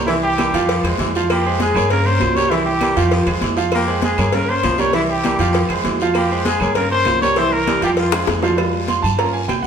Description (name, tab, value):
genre	latin, salsa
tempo	198 BPM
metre	4/4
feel	straight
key	F minor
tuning	A4 = 440 Hz
part	bright concert grand piano	accompaniment	0.0-9.7 s	E3 to C6	-20 LUFS	right 3 dB	none
part	upright bass	bass	0.0-9.7 s	C2 to G2	-23 LUFS	left 1 dB	none
part	warm trumpet	melody	0.1-8.3 s	E4 to Db5	-20 LUFS	left 1 dB	none
part	growling baritone saxophone	second line	0.1-8.4 s	Db3 to Bb3	-26 LUFS	left 3 dB	none
part	agogo bells and timbales	percussion	0.1-9.6 s	none	-27 LUFS	right 6 dB	none
part	congas	percussion	0.1-9.7 s	none	-27 LUFS	equal	none
part	cowbell and bongos	percussion	0.1-9.6 s	none	-25 LUFS	left 3 dB	none
part	guiro	percussion	0.1-9.7 s	none	-32 LUFS	left 6 dB	none
part	claves	percussion	0.4-9.6 s	none	-36 LUFS	right 5 dB	none
room	wet stone room reverb, RT60 1.3 s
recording	band playing live in one room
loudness	-15 LUFS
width	side -7 dB against mid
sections	0.0-8.6 A section; 8.6-9.7 B section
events	drum fill 8.1-8.6; grand piano solo 8.6-9.7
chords	0.1 C7; 0.7 Fmadd9; 1.9 Gm7b5; 2.5 C7; 3.1 Fmadd9; 4.3 Gm7b5; 4.9 C7; 5.5 Fmadd9; 6.8 Gm7b5; 7.4 C7; 8.0 Fm; 8.6 Fmadd9